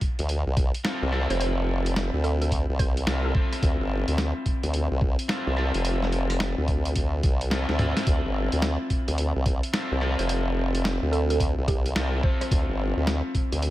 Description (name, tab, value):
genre	glitch hop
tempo	108 BPM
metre	4/4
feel	swing 63% on 16ths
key	D minor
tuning	A4 = 444 Hz
part	boom bap sampler-style drum kit	drums	0.0-13.7 s	hi-hat, rim click, snare drum, toms	-30 LUFS	equal	none
part	electronic kick drum	drums	0.0-13.5 s	none	-25 LUFS	equal	none
part	formant-sweep wobble bass	bass	0.2-13.7 s	F1 to D2	-25 LUFS	equal	chorus, tube saturation
part	electric guitar at the edge of break-up	stabs	0.8-13.7 s	C4 to A4	-31 LUFS	left 2 dB	sidechain pumping, dub echo
part	woody wave-folded pluck	melody	1.3-3.8, 10.2-12.5 s	G4 to C5	-35 LUFS	right 5 dB	lush chorus, dub echo
room	digital ambience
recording	echo-heavy mix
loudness	-23 LUFS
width	side -15 dB against mid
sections	0.0-13.7 A section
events	kick drops out 7.5-8.1; drum fill 7.7-8.1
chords	0.0 Dm7